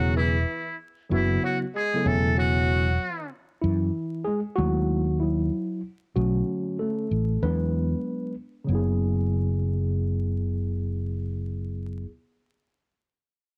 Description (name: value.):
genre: hip hop, jazz-hop.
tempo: 95 BPM.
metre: 4/4.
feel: swing 66% on 16ths.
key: F# minor.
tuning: A4 = 439 Hz.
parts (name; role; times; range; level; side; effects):
trumpet with metal mute; melody; 0.0-3.3 s; E4 to A4; -30 LUFS; equal; cassette tape.
growling tenor saxophone; second line; 0.0-3.3 s; E3 to A3; -34 LUFS; equal; cassette tape.
mellow tine electric piano; accompaniment; 0.0-12.1 s; C#3 to G#5; -30 LUFS; equal; cassette tape.
mellow fretless electric bass; bass; 0.0-12.0 s; E1 to F#2; -27 LUFS; equal; none.
room: light reverb, small room ambience.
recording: home recording on cassette, vinyl crackle.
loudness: -26 LUFS.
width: mono.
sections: 0.0-3.6 A section; 3.6-8.7 B section; 8.7-11.2 C section.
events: tine electric piano solo 3.6-8.7.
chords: 0.0 F#7(no3); 3.6 F#m7; 6.2 Bm7; 7.4 E9; 8.7 F#5.